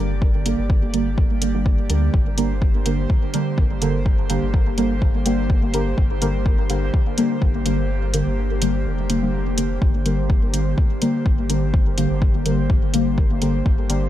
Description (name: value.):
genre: dub techno.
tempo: 125 BPM.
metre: 4/4.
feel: swing 55% on 16ths.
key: G minor.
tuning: A4 = 440 Hz.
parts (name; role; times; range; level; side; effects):
airy breathy pad; sustained chords; 0.0-14.1 s; D3 to D5; -28 LUFS; equal; chorus, sidechain pumping.
deep mellow chord stab; stabs; 0.0-14.1 s; D3 to Bb3; -23 LUFS; equal; chorus, phaser, sidechain pumping, dub echo.
warm sub bass; bass; 0.0-14.1 s; F1 to D2; -24 LUFS; equal; sidechain pumping.
electronic kick drum; drums; 0.2-13.8 s; none; -18 LUFS; equal; studio reverb.
electronic hi-hat; drums; 0.5-14.0 s; none; -27 LUFS; equal; studio reverb.
room: digital ambience.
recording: none.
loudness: -17 LUFS.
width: side -12 dB against mid.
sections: 0.0-14.1 A section.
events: kick drops out 7.9-9.8.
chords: 0.0 Gm.